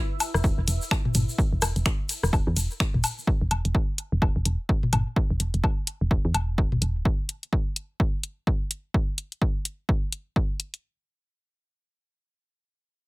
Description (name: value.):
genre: minimal techno.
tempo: 127 BPM.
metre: 4/4.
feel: swing 60% on 16ths.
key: E minor.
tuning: A4 = 440 Hz.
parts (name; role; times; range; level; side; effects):
punchy analog drum machine; drums; 0.2-10.8 s; finger snaps, hi-hat; -28 LUFS; left 1 dB; none.
egg shaker; percussion; 0.2-3.3 s; none; -34 LUFS; left 1 dB; none.
garage drum kit; percussion; 0.2-6.8 s; rim click, toms, woodblock; -28 LUFS; left 2 dB; dub echo.
woody FM bass; bass; 0.3-7.0 s; D1 to E2; -25 LUFS; equal; tube saturation, sidechain pumping.
electronic kick drum; drums; 0.4-10.5 s; none; -24 LUFS; equal; none.
room: little or no reverb.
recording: none.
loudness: -23 LUFS.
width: side -22 dB against mid.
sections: 0.0-10.8 A section.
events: none.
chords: none.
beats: 0.44 0.91 | 1.38 1.86 2.33 2.80 | 3.27 3.75 4.22 4.69 | 5.16 5.64 6.11 6.58 | 7.05 7.53 8.00 8.47 | 8.94 9.41 9.89 10.36.